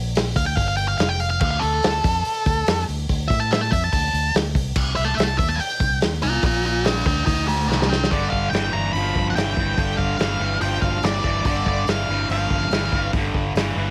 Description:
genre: blues rock power trio and southern rock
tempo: 143 BPM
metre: 4/4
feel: straight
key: unclear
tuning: A4 = 440 Hz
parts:
  - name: fingered electric bass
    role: bass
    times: 0.0-13.9 s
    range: F1 to A2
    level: -27 LUFS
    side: equal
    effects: none
  - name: vintage drum kit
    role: drums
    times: 0.2-13.7 s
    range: crash cymbal, hi-hat, kick drum, snare drum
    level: -26 LUFS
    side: equal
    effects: none
  - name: octave-fuzz lead guitar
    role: melody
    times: 0.4-13.1 s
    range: F#4 to B5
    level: -25 LUFS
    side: equal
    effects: distortion
  - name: sludgy distorted guitar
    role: riff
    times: 8.1-13.9 s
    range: G2 to F3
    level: -27 LUFS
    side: equal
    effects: overdrive
room: light reverb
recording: none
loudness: -21 LUFS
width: mono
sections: 0.0-8.1 A section; 8.1-13.9 B section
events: lead electric guitar solo 0.0-8.1; drum fill 7.7-8.1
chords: 0.0 G7(no3); 1.4 D5; 4.8 C5; 6.4 Bb6; 7.3 D7; 8.1 G7(no3)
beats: 0.16 0.58 1.00 | 1.42 1.83 2.25 2.67 | 3.09 3.51 3.93 4.34 | 4.76 5.18 5.60 6.02 | 6.43 6.85 7.27 7.69 | 8.11 8.53 8.94 9.36 | 9.78 10.20 10.62 11.04 | 11.46 11.88 12.30 12.72 | 13.14 13.56

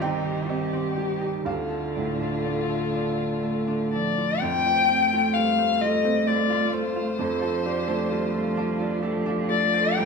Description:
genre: neoclassical piano and strings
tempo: 59-66 BPM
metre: 3/4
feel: rubato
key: unclear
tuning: A4 = 439 Hz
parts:
  - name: muted violin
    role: melody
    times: 0.0-10.1 s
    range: Eb4 to G5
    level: -25 LUFS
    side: left 6 dB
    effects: none
  - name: muted cello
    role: second line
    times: 0.0-10.1 s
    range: D3 to A3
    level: -30 LUFS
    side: right 4 dB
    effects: none
  - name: felt-muted upright piano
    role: accompaniment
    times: 0.0-10.1 s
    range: C2 to G5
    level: -28 LUFS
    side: right 2 dB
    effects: none
  - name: muted viola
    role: accompaniment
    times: 0.0-10.1 s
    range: F4 to Bb4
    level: -33 LUFS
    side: right 6 dB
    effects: none
  - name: concert harp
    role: arpeggios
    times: 0.0-10.1 s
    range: C4 to F5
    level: -36 LUFS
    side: right 2 dB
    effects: none
room: wet large studio reverb, RT60 1.2 s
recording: band playing live in one room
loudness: -22 LUFS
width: side -5 dB against mid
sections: 0.0-4.4 A section; 4.4-10.1 B section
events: none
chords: 0.0 Cmadd9; 1.5 Dm; 4.4 Fadd9; 7.2 Dm7/F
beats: 0.50 | 1.46 2.45 3.42 | 4.42 5.35 6.27 | 7.19 8.10 9.02 | 9.97

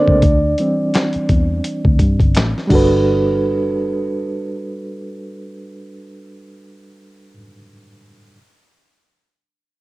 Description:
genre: R&B, neo-soul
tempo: 85 BPM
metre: 4/4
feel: swing 57% on 16ths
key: G major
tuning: A4 = 442 Hz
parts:
  - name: reed electric piano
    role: accompaniment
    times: 0.0-8.4 s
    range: D3 to D5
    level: -18 LUFS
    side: right 1 dB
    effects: fast tremolo, cassette tape
  - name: vintage muted fingered electric bass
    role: bass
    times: 0.1-7.3 s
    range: G1 to G2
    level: -19 LUFS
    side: equal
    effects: none
  - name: dusty soul sampler-style drum kit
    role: drums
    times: 0.1-2.9 s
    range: crash cymbal, handclaps, hi-hat, kick drum, snare drum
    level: -16 LUFS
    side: equal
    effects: cassette tape
room: light reverb, digital ambience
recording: home recording on cassette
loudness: -14 LUFS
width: side -20 dB against mid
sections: 0.0-3.0 A section; 3.0-5.9 B section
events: reed electric piano solo 0.0-3.0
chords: 0.2 D7sus4; 2.7 Gmaj9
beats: | 0.23 0.93 1.64 2.34 | 3.05 3.75 4.46 5.17

